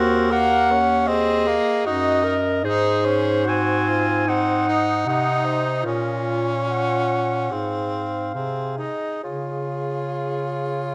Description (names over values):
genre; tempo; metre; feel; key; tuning
classical, lyrical piece for single-reed quartet; 64-80 BPM; 4/4; rubato; unclear; A4 = 440 Hz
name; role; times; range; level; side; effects
mellow clarinet; melody; 0.0-10.9 s; Bb4 to Ab5; -26 LUFS; equal; none
clear alto saxophone; second line; 0.0-10.9 s; Eb4 to Bb4; -29 LUFS; equal; none
bright tenor saxophone; accompaniment; 0.0-10.9 s; Bb3 to F4; -27 LUFS; equal; none
warm bass clarinet; bass; 0.0-10.9 s; Eb2 to Db3; -28 LUFS; equal; none
room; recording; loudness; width
moderate recital hall reverb, RT60 1.5 s; none; -22 LUFS; mono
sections
0.0-10.9 A section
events
none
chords
0.0 Ebm7; 2.6 Ab7; 5.8 Bbm; 7.5 Ab; 9.2 Db